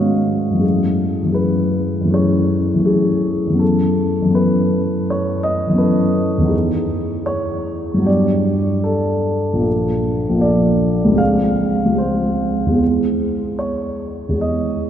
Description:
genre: classical, impressionist solo piano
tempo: 71-85 BPM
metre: 4/4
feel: rubato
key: unclear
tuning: A4 = 441 Hz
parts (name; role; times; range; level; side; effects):
- warm grand piano; solo; 0.0-14.9 s; A#1 to E#5; -15 LUFS; equal; none
room: wet church reverb, RT60 3.6 s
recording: dark, warm production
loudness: -15 LUFS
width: side -9 dB against mid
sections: 0.0-14.9 A section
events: none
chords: 0.0 B69/G#; 0.6 F#m11; 3.6 A69/F#; 6.5 Emaj7; 8.1 Gmaj7; 9.7 A#maj7; 11.2 C#maj7; 12.8 Emaj7

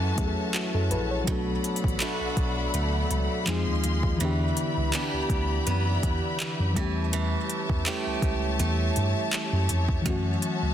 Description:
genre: contemporary R&B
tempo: 82 BPM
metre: 4/4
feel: swing 54% on 16ths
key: E dorian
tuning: A4 = 436 Hz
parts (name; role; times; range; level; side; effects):
- mellow FM electric piano; accompaniment; 0.0-10.7 s; D3 to C#5; -31 LUFS; left 3 dB; chorus
- warm studio string section; sustained chords; 0.0-10.7 s; F#4 to C6; -32 LUFS; left 3 dB; none
- picked steel-string acoustic guitar; arpeggios; 0.0-10.7 s; F#2 to G4; -33 LUFS; right 8 dB; digital delay
- mellow tine electric piano; bass; 0.0-10.7 s; A1 to G2; -28 LUFS; equal; none
- smooth R&B drum kit; drums; 0.2-10.6 s; handclaps, hi-hat, kick drum; -29 LUFS; equal; overdrive
room: light reverb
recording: dense, heavily limited modern master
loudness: -24 LUFS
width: side -10 dB against mid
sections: 0.0-10.7 A section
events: kick muted 4.2-4.9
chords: 0.0 F#m7; 1.3 Bm7; 3.5 Fm7; 4.2 Em7; 6.8 A7; 10.1 F#m7

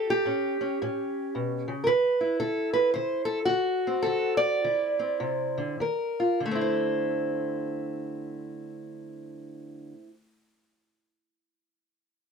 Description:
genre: acoustic country blues, solo or duo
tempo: 95-112 BPM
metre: 4/4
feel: swing 64% on 8ths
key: D mixolydian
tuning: A4 = 440 Hz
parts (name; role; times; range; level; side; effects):
- fingerpicked steel-string acoustic guitar; solo; 0.0-10.1 s; A2 to D5; -26 LUFS; right 1 dB; none
room: moderate small room reverb, RT60 0.5 s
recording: close, detailed microphones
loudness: -25 LUFS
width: side -6 dB against mid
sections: 0.0-6.4 A section; 6.4-11.5 B section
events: slowing down 1.9-6.4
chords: 0.0 A7; 1.9 D9; 5.8 Ebsus2; 6.4 Dsus2

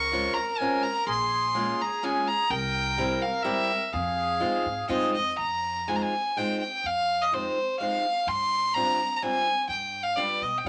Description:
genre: musette waltz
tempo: 126 BPM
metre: 3/4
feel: rubato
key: F minor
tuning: A4 = 440 Hz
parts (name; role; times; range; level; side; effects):
- rich violin; melody; 0.0-10.7 s; C5 to Db6; -28 LUFS; equal; none
- accordion; second line; 0.0-5.1 s; Ab4 to Bb4; -34 LUFS; equal; none
- upright bass; bass; 0.0-10.7 s; Bb1 to B2; -40 LUFS; equal; none
- picked steel-string acoustic guitar; accompaniment; 0.1-10.7 s; G3 to G4; -33 LUFS; equal; none
room: wet small room reverb, RT60 0.5 s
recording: none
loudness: -27 LUFS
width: mono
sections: 0.0-5.4 A section; 5.4-10.7 B section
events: none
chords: 0.0 Dbmaj7; 1.1 Bbm7; 2.5 C; 3.9 Fm7; 8.3 G7sus4; 9.7 G7

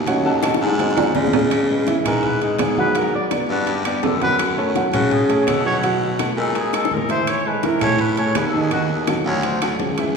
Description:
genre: Afro-Cuban jazz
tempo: 167 BPM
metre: 4/4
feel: straight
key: C# minor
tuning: A4 = 440 Hz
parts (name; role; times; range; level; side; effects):
- warm baby grand piano; accompaniment; 0.0-10.2 s; D#3 to A5; -22 LUFS; right 2 dB; none
- growling baritone saxophone; bass; 0.0-10.2 s; C#2 to C#3; -22 LUFS; left 1 dB; none
- bongos; percussion; 0.1-10.0 s; none; -29 LUFS; left 5 dB; none
- congas; percussion; 0.1-10.0 s; none; -29 LUFS; left 1 dB; none
- timbales; percussion; 0.1-10.2 s; none; -26 LUFS; right 4 dB; none
- claves; percussion; 0.4-9.8 s; none; -36 LUFS; left 3 dB; none
- breathy trumpet; melody; 2.1-9.7 s; D#4 to D5; -24 LUFS; left 1 dB; none
room: wet concert hall reverb, RT60 2.2 s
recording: recorded in a church or concert hall, studio reverb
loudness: -17 LUFS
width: side -5 dB against mid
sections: 0.0-1.5 A section; 1.5-10.2 A section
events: grand piano solo 0.0-1.5; drum fill 0.4-1.5, 6.7-7.3; trumpet solo 1.5-10.2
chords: 0.1 D#m7b5; 0.8 G#7b9; 1.5 C#m7; 3.0 G#m7b5; 3.7 G; 4.4 F#madd9; 5.8 B5; 6.6 Caug7; 7.3 A5; 8.7 D#dim; 9.4 Dadd9

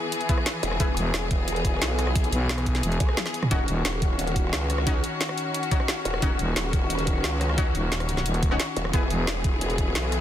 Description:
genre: dark technical drum and bass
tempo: 177 BPM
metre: 4/4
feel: straight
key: Eb phrygian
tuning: A4 = 445 Hz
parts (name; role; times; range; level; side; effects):
- clear studio string section; sustained chords; 0.0-10.2 s; Eb3 to G#4; -30 LUFS; left 2 dB; sidechain pumping
- drum and bass drum kit; drums; 0.1-10.2 s; hi-hat, rim click, snare drum, toms; -29 LUFS; equal; overdrive, studio reverb
- orchestra-hit-like synth stab; stabs; 0.3-0.9, 3.5-9.0 s; B3 to G#4; -33 LUFS; left 2 dB; built-in reverb, ping-pong delay
- electronic kick drum; drums; 0.3-9.8 s; none; -25 LUFS; equal; overdrive, studio reverb
- growl bass; bass; 0.6-10.2 s; Eb1 to Db2; -27 LUFS; equal; chorus, sidechain pumping
- growling FM bass; bass; 1.0-3.8, 6.4-9.3 s; Eb1 to B1; -25 LUFS; equal; tube saturation
room: little or no reverb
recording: dense, heavily limited modern master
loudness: -22 LUFS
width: side -11 dB against mid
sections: 0.0-10.2 A section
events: kick drops out 3.2-3.5; drum fill 3.2-3.5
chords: 0.0 E; 3.5 Ebm7; 8.9 E

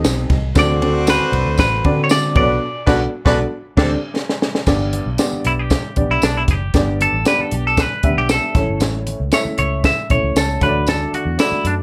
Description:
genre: uptempo 1960s-style soul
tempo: 116 BPM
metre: 4/4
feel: straight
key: G lydian from 4.7 s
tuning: A4 = 439 Hz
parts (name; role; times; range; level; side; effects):
- warm horn section; second line; 0.0-3.9 s; C4 to Eb5; -26 LUFS; equal; tube saturation, plate reverb
- dark upright piano; accompaniment; 0.0-11.8 s; G2 to E5; -24 LUFS; equal; none
- vintage muted fingered electric bass; bass; 0.0-11.8 s; F#1 to D3; -24 LUFS; equal; none
- compact cocktail drum kit; drums; 0.0-11.8 s; crash cymbal, hi-hat, kick drum, ride cymbal, snare drum; -21 LUFS; equal; none
- congas; percussion; 0.0-11.8 s; none; -35 LUFS; equal; none
- tambourine; percussion; 0.0-11.5 s; none; -32 LUFS; equal; none
- semi-hollow electric guitar; melody; 0.6-11.7 s; D4 to E5; -22 LUFS; equal; none
room: light reverb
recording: none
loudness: -17 LUFS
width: mono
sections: 0.0-4.7 A section; 4.7-11.8 B section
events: band accent 2.6-4.7; drum fill 4.2-4.7; clean electric guitar solo 4.7-11.8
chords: 0.0 Cm6; 0.6 D7; 2.4 Bm7; 3.6 D7sus4; 4.7 G; 8.6 A; 10.6 D

